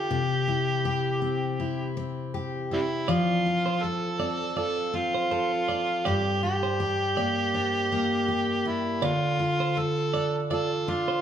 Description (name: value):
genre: pop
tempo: 81 BPM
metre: 4/4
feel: swing 55% on 16ths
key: F major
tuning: A4 = 440 Hz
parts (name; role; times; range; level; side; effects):
- overdriven harmonica; melody; 0.0-11.2 s; G3 to A4; -27 LUFS; right 2 dB; none
- picked steel-string acoustic guitar; accompaniment; 0.0-11.2 s; G2 to A4; -28 LUFS; left 2 dB; none
- semi-hollow electric guitar; arpeggios; 3.1-11.2 s; Bb4 to D5; -33 LUFS; right 7 dB; none
room: wet large studio reverb, RT60 1.1 s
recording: band playing live in one room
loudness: -24 LUFS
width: side -9 dB against mid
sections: 0.0-11.2 A section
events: none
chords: 0.1 C; 3.1 F; 6.1 Gm; 9.0 Dm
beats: | 0.11 0.85 1.59 2.34 | 3.08 3.83 4.57 5.31 | 6.05 6.80 7.54 8.28 | 9.03 9.77 10.51